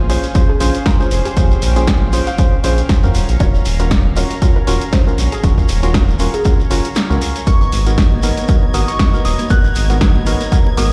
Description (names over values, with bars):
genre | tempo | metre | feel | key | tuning
deep house | 118 BPM | 4/4 | swing 56% on 16ths | unclear | A4 = 440 Hz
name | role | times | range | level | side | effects
warm analog pad | sustained chords | 0.0-10.9 s | B3 to A#5 | -29 LUFS | equal | chorus, sidechain pumping
percussive organ stab | stabs | 0.0-10.9 s | B3 to B#4 | -24 LUFS | equal | chorus, sidechain pumping, analog delay
round analog bass | bass | 0.0-10.9 s | D#1 to E#2 | -18 LUFS | equal | tube saturation, sidechain pumping
soft round pluck | melody | 0.1-7.4 s | F#4 to E#5 | -29 LUFS | equal | lush chorus, tape echo
punchy analog drum machine | drums | 0.1-10.9 s | hi-hat, snare drum | -25 LUFS | equal | none
shekere | percussion | 0.1-10.9 s | none | -33 LUFS | equal | none
electronic kick drum | drums | 0.4-10.6 s | none | -17 LUFS | equal | none
glassy synth bell | melody | 7.5-10.9 s | C#6 to F#6 | -26 LUFS | equal | chorus, analog delay
warm symphonic violin section | texture | 7.5-10.9 s | G#6 | -35 LUFS | equal | sidechain pumping
congas | percussion | 8.1-10.9 s | none | -29 LUFS | equal | none
room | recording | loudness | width
little or no reverb | played on a big sound system in a bare room, large studio reverb | -14 LUFS | mono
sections
0.0-10.9 A section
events
kick drops out 7.0-7.5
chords
0.0 A#m9; 3.1 D#m9; 7.5 G#m9